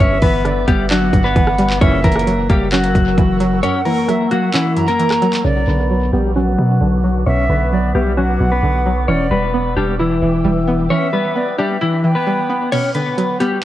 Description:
hip hop, trap; 132 BPM; 4/4; half-time; B harmonic minor; A4 = 441 Hz
clean electric guitar; melody; 0.0-13.6 s; E3 to C#5; -17 LUFS; left 2 dB; lush chorus, low-pass filter, tape echo
breathy silver concert flute; second line; 0.0-12.7 s; D5 to A#5; -24 LUFS; right 3 dB; tape echo
string-like resonator pluck; accompaniment; 0.0-13.6 s; F#2 to E4; -20 LUFS; right 1 dB; chorus, low-pass filter, tape echo
ethereal airy pad; sustained chords; 0.0-13.6 s; A#4 to F#6; -27 LUFS; right 3 dB; ensemble chorus, built-in reverb, low-pass filter
long sustained 808-style bass; bass; 0.0-10.9 s; E1 to B2; -19 LUFS; equal
trap drum kit; drums; 0.2-5.4, 12.7-13.5 s; crash cymbal, handclaps, hi-hat, kick drum, rim click; -18 LUFS; equal
clear brass ensemble; stabs; 1.8-2.2 s; A#2 to E3; -23 LUFS; right 2 dB
light reverb, digital ambience; echo-heavy mix, cassette tape; -13 LUFS; side -13 dB against mid
0.0-5.4 A section; 5.4-12.7 B section
kick muted 3.6-5.4, 12.7-13.6; filter sweep 5.4-12.7
0.0 G6; 1.8 F#7; 5.4 Bmadd9; 9.1 Em7; 12.7 Bmadd9

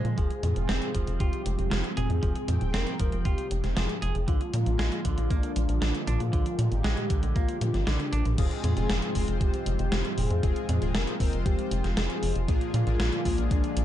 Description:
synthwave; 117 BPM; 4/4; straight; F dorian; A4 = 440 Hz
wide unison lead; melody; 0.0-13.8 s; D4 to Bb4; -34 LUFS; left 1 dB; cassette tape, tape echo
lush unison pad; sustained chords; 0.0-13.8 s; Ab2 to G5; -36 LUFS; right 1 dB; chorus, phaser, sidechain pumping
semi-hollow electric guitar; arpeggios; 0.0-8.3 s; D3 to Ab4; -38 LUFS; right 4 dB; ping-pong delay
tight sequencer bass; bass; 0.0-13.8 s; Eb1 to Bb2; -28 LUFS; equal; sidechain pumping
gated 80s digital drum machine; drums; 0.0-13.8 s; crash cymbal, hi-hat, snare drum, toms; -32 LUFS; right 1 dB; gated reverb, gated reverb snare
electronic kick drum; drums; 0.2-13.6 s; -28 LUFS; equal
chorused polysynth; stabs; 8.4-13.8 s; Bb2 to C5; -35 LUFS; left 6 dB
little or no reverb; dark, warm production, nothing above 10.7 kHz; -25 LUFS; side -12 dB against mid
0.0-8.4 A section; 8.4-13.8 B section
drum fill 7.6-8.4
0.2 Fm; 4.3 Bb7; 8.4 Fm; 12.5 Bb7

